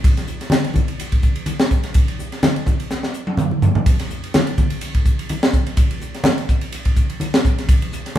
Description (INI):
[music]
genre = jazz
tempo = 126 BPM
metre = 4/4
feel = swing 55% on 16ths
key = none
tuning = none
[part]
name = crisp fusion drum kit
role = drums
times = 0.0-8.2 s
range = hi-hat, kick drum, ride cymbal, snare drum, toms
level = -17 LUFS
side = equal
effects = none
[part]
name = congas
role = percussion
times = 0.0-8.2 s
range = none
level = -24 LUFS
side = left 1 dB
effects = none
[sound]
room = moderate large studio reverb, RT60 0.9 s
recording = band playing live in one room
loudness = -16 LUFS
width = side -12 dB against mid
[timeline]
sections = 0.0-8.2 A section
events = drum fill 2.9-3.9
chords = none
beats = | 0.04 0.52 0.99 1.47 | 1.95 2.43 2.91 3.38 | 3.86 4.34 4.82 5.29 | 5.77 6.25 6.73 7.21 | 7.68 8.16